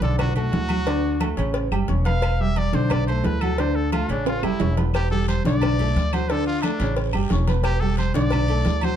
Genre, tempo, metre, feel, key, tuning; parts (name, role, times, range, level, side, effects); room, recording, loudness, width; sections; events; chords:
latin, salsa; 177 BPM; 4/4; straight; D major; A4 = 440 Hz
bright trumpet; melody; 0.0-9.0 s; D4 to F5; -28 LUFS; left 1 dB; plate reverb
clear grand piano; accompaniment; 0.0-9.0 s; C#3 to C#6; -26 LUFS; right 1 dB
upright bass; bass; 0.0-9.0 s; E1 to D2; -23 LUFS; equal
congas; percussion; 0.0-9.0 s; -29 LUFS; equal
cowbell; percussion; 0.0-8.8 s; -32 LUFS; left 1 dB
agogo bells and timbales; percussion; 0.2-9.0 s; -32 LUFS; right 6 dB
claves; percussion; 0.2-9.0 s; -39 LUFS; left 8 dB
guiro; percussion; 4.9-9.0 s; -41 LUFS; left 6 dB
light reverb; dark, warm production; -19 LUFS; side -10 dB against mid
0.0-9.0 A section
trumpet solo 0.0-9.0; drum fill 4.3-4.9
0.2 Bm7; 0.9 D; 1.6 A7; 2.2 Em7; 2.9 Bm7; 3.6 D5; 4.3 A7; 4.9 Em7; 5.6 Bm7; 6.3 D5; 7.0 A7; 7.6 Em7; 8.3 Bm7